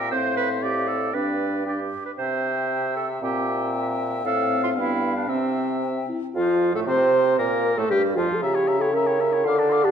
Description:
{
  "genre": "quick classical-period movement for wind quintet",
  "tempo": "116 BPM",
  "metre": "2/4",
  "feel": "straight",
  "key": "C major",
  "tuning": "A4 = 440 Hz",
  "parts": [
    { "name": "mellow hollow concert flute", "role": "melody", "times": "0.0-9.9 s", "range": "F4 to D6", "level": "-29 LUFS", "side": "left 8 dB", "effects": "none" },
    { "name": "clear oboe", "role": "second line", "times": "0.0-9.9 s", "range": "F4 to F5", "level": "-31 LUFS", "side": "left 4 dB", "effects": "none" },
    { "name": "bright clarinet", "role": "accompaniment", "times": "0.0-9.9 s", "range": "F3 to C5", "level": "-28 LUFS", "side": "right 6 dB", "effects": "none" },
    { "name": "mellow French horn", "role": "accompaniment", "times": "0.0-9.9 s", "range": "B3 to C5", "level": "-24 LUFS", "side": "right 1 dB", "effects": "none" },
    { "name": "warm bassoon", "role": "bass", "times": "0.0-9.9 s", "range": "F2 to D3", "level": "-28 LUFS", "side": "right 2 dB", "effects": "none" }
  ],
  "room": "wet recital hall reverb, RT60 1.7 s",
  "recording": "dark, warm production",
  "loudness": "-20 LUFS",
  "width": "side -8 dB against mid",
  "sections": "0.0-6.4 A section; 6.4-9.9 B section",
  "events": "none",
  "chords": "0.1 F/A; 0.6 Dm7/A; 1.2 G; 2.2 C; 3.2 C7/Bb; 4.3 F/A; 4.8 G7; 5.3 C; 6.4 F; 7.4 Gm9; 8.4 C#dim7"
}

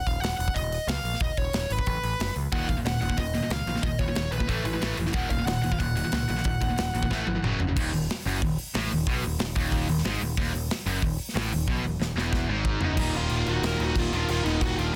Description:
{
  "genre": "heavy metal",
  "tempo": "184 BPM",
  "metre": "4/4",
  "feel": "straight",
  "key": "Eb minor",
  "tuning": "A4 = 440 Hz",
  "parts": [
    { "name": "high-gain lead guitar", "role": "melody", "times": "0.0-7.4, 12.8-14.9 s", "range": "Eb4 to Gb5", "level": "-34 LUFS", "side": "equal", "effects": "distortion, delay" },
    { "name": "growling picked electric bass", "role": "bass", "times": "0.1-14.9 s", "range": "Eb1 to Db2", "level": "-33 LUFS", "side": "equal", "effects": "overdrive" },
    { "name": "modern studio drum kit", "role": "drums", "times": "0.1-14.9 s", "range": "crash cymbal, hi-hat, kick drum, snare drum, toms", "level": "-32 LUFS", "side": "equal", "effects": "soft clipping on snare" },
    { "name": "distorted electric guitar", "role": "riff", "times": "2.5-15.0 s", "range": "Eb2 to A3", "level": "-33 LUFS", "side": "equal", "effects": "overdrive" },
    { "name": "distorted electric guitar", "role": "riff", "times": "2.5-13.0 s", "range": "Eb2 to A3", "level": "-34 LUFS", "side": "equal", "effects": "distortion" },
    { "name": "high-gain lead guitar", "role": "second line", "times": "12.8-14.9 s", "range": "Bb3 to Gb4", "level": "-38 LUFS", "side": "equal", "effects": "distortion" }
  ],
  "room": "little or no reverb",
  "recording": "dense, heavily limited modern master",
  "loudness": "-27 LUFS",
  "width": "mono",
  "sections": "0.0-7.8 A section; 7.8-13.0 B section; 13.0-15.0 C section",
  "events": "drum fill 7.1-7.8, 11.7-13.0; half time 13.0-15.0",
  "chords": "0.0 Eb5; 1.9 Asus2; 2.2 Gb5; 2.5 Eb5; 4.5 A5; 5.1 Ebm; 7.1 A5; 7.4 Gb5; 7.8 Ebm; 13.0 Eb5"
}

